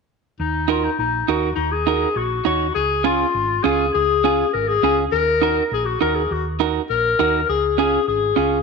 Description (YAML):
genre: latin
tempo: 203 BPM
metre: 4/4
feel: straight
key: Eb minor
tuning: A4 = 442 Hz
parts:
  - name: mellow clarinet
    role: second line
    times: 0.4-8.6 s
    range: Eb4 to Bb4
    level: -19 LUFS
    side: left 7 dB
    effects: none
  - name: hollow-body short-scale fingered electric bass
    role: bass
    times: 0.4-8.6 s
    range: Ab1 to Eb2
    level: -27 LUFS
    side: right 1 dB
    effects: none
  - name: clean electric guitar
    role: accompaniment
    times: 0.7-8.6 s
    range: Db4 to Db5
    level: -22 LUFS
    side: right 12 dB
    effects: none
room: wet echo chamber reverb, RT60 1.4 s, small room ambience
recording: 1960s-style stereo with parts hard left and right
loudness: -17 LUFS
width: side -4 dB against mid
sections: 0.4-8.6 A section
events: none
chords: 0.4 Ebm; 2.8 Db; 5.1 Ebm; 7.5 Db